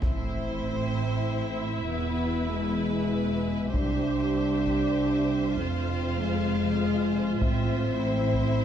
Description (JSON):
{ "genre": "cinematic, epic orchestral film score", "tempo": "98 BPM", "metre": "3/4", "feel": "straight", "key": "A harmonic minor", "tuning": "A4 = 438 Hz", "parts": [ { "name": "rich chamber violin section", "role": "melody", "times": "0.0-8.6 s", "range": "E5 to F5", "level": "-39 LUFS", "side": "left 7 dB", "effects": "none" }, { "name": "clear symphonic violin section", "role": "second line", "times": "0.0-8.6 s", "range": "B4 to C5", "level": "-36 LUFS", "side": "left 1 dB", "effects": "none" }, { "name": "rich studio viola section", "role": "accompaniment", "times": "0.0-8.6 s", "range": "E4 to G4", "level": "-36 LUFS", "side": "right 3 dB", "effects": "none" }, { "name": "warm French horn section", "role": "sustained chords", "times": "0.0-8.6 s", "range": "G#3 to D4", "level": "-28 LUFS", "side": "left 2 dB", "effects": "none" }, { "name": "rich symphonic cello section", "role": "bass", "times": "0.0-8.6 s", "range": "C2 to A2", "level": "-32 LUFS", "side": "right 3 dB", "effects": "none" }, { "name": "warm symphonic double bass section", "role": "bass", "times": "0.0-8.6 s", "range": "E1 to C2", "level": "-32 LUFS", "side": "right 5 dB", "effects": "none" }, { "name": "solo taiko drums", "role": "drums", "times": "0.0-8.6 s", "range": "none", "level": "-31 LUFS", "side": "equal", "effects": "none" }, { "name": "impact", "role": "sound effects", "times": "0.0-1.9 s", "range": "none", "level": "-38 LUFS", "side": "equal", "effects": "none" } ], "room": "moderate concert hall reverb, RT60 2.3 s", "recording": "dark, warm production", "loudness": "-24 LUFS", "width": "side -9 dB against mid", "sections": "0.0-8.6 A section", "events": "impact 0.0-1.9", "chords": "0.0 Am; 1.9 E; 3.7 C; 5.6 Fm; 7.4 Am" }